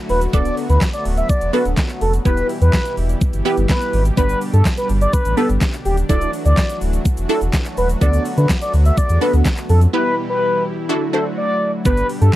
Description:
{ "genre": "dance-pop", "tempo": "125 BPM", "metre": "4/4", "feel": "straight", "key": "G major", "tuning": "A4 = 438 Hz", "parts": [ { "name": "soft supersaw", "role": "sustained chords", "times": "0.0-12.4 s", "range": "B2 to G4", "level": "-26 LUFS", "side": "equal", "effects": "phaser, sidechain pumping" }, { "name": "expressive synth lead", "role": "melody", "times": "0.1-12.3 s", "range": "G4 to E5", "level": "-20 LUFS", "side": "equal", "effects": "chorus, sidechain pumping, slapback echo" }, { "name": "sub bass with octave", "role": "bass", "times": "0.1-12.3 s", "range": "D1 to D3", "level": "-15 LUFS", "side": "equal", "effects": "sidechain pumping" }, { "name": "pop drum kit", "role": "drums", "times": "0.1-12.4 s", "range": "handclaps, hi-hat, kick drum, shaker, snare drum", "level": "-19 LUFS", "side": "equal", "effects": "overdrive" }, { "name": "wide unison pluck", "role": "accompaniment", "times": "0.3-12.4 s", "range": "B3 to C5", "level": "-23 LUFS", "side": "right 1 dB", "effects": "phaser, sidechain pumping" }, { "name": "egg shaker", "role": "percussion", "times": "4.2-9.9 s", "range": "none", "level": "-40 LUFS", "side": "left 16 dB", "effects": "none" } ], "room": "little or no reverb", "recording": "dry, close 1970s-style studio recording", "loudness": "-15 LUFS", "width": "side -15 dB against mid", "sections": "0.0-11.9 A section", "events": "drop 0.0-11.9; break 9.9-11.9", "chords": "0.3 Bm7/D; 2.3 Em; 4.2 G; 6.1 Dadd9; 8.0 Bm7/D; 9.9 Em; 10.9 Dadd9; 11.9 G", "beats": "| 0.33 0.81 1.29 1.77 | 2.25 2.73 3.21 3.69 | 4.17 4.65 5.13 5.61 | 6.09 6.57 7.05 7.53 | 8.01 8.49 8.97 9.45 | 9.93 10.41 10.89 11.37 | 11.85 12.33" }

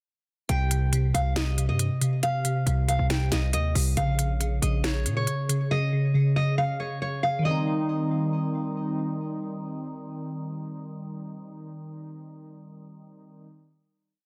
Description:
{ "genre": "hip hop, trap", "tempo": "138 BPM", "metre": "4/4", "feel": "half-time", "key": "C phrygian", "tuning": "A4 = 440 Hz", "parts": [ { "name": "nylon-string guitar", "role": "melody", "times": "0.5-8.7 s", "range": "Db5 to G5", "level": "-33 LUFS", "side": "equal", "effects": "low-pass filter, delay" }, { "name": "glassy digital keys", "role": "accompaniment", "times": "0.5-13.4 s", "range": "C3 to Eb4", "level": "-30 LUFS", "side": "equal", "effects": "chorus, low-pass filter" }, { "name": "hard-hitting 808-style bass", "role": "bass", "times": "0.5-5.3 s", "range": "Bb1 to Bb2", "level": "-29 LUFS", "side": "equal", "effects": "none" }, { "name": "trap drum kit", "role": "drums", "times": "0.5-5.6 s", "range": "hi-hat, snare drum", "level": "-32 LUFS", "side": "equal", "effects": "none" } ], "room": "light reverb, digital ambience", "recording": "dense, heavily limited modern master", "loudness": "-26 LUFS", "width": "mono", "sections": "0.5-7.4 hook; 7.4-10.9 final chord", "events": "none", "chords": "0.5 Cm; 4.0 Bbm; 7.4 Cm", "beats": "| 0.49 0.93 1.36 1.80 | 2.23 2.67 3.10 3.54 | 3.97 4.40 4.84 5.27 | 5.71 6.14 6.58 7.01 | 7.45 7.88 8.32 8.75 | 9.19 9.62 10.06 10.49" }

